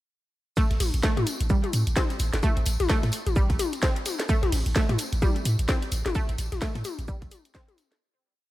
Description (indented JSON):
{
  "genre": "minimal techno",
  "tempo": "129 BPM",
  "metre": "4/4",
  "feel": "swing 59% on 16ths",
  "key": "A minor",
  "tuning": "A4 = 440 Hz",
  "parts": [
    { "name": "resonant blip pluck", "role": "riff", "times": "0.6-7.6 s", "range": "G3 to C4", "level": "-33 LUFS", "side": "right 2 dB", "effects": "chorus, cassette tape, sidechain pumping, dub echo" },
    { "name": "breakbeat sampler-style drum kit", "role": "drums", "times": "0.6-7.9 s", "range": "hi-hat, shaker, snare drum", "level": "-41 LUFS", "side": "right 2 dB", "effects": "none" },
    { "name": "electronic kick drum", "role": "drums", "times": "0.6-7.7 s", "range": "none", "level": "-25 LUFS", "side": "equal", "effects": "none" },
    { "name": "tambourine", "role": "percussion", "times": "0.6-8.0 s", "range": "none", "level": "-39 LUFS", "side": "left 2 dB", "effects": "none" },
    { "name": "punchy sub bass", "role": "bass", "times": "0.7-7.3 s", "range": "G1 to A2", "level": "-26 LUFS", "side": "equal", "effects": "sidechain pumping" },
    { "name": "house drum kit", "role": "drums", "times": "0.7-8.0 s", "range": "hi-hat, snare drum", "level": "-32 LUFS", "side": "equal", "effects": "none" },
    { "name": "electronic toms and percussion blips", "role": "percussion", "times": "0.8-7.8 s", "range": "none", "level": "-33 LUFS", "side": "left 6 dB", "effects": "dub echo" }
  ],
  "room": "digital ambience",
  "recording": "none",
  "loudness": "-23 LUFS",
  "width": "side -16 dB against mid",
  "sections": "0.6-8.0 drop",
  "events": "drop 0.6-8.0; fade-out 5.5-8.0",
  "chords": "none"
}